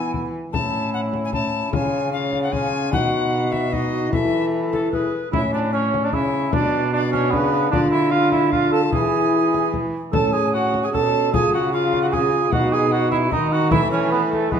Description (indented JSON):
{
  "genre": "classical, renaissance-style consort dance",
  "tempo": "150 BPM",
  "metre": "3/4",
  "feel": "straight",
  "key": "A major",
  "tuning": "A4 = 440 Hz",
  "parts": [
    { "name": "bright alto recorder", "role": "melody", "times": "0.0-14.6 s", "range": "A4 to A5", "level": "-27 LUFS", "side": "left 6 dB", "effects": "none" },
    { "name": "mellow cor anglais", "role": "second line", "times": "0.0-14.6 s", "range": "A3 to A4", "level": "-22 LUFS", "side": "right 5 dB", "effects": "none" },
    { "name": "clear trombone", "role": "accompaniment", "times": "0.0-14.6 s", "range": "G#3 to F4", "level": "-24 LUFS", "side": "left 4 dB", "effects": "none" },
    { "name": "rich cello", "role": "bass", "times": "0.0-14.6 s", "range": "A2 to E3", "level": "-24 LUFS", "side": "right 2 dB", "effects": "none" },
    { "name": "frame drum", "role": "percussion", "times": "0.1-14.6 s", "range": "none", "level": "-26 LUFS", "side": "left 3 dB", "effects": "none" }
  ],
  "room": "wet recital hall reverb, RT60 1.3 s",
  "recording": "lossy compression artefacts",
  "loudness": "-18 LUFS",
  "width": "side -7 dB against mid",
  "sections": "0.0-5.3 A section; 5.3-14.6 A section",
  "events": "none",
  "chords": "0.0 E; 0.5 A; 1.7 C#; 2.9 B; 4.1 Esus4; 5.3 A; 6.5 Bm; 7.7 Dm; 8.9 E; 10.1 A; 11.3 C#; 12.5 B; 13.7 Esus4"
}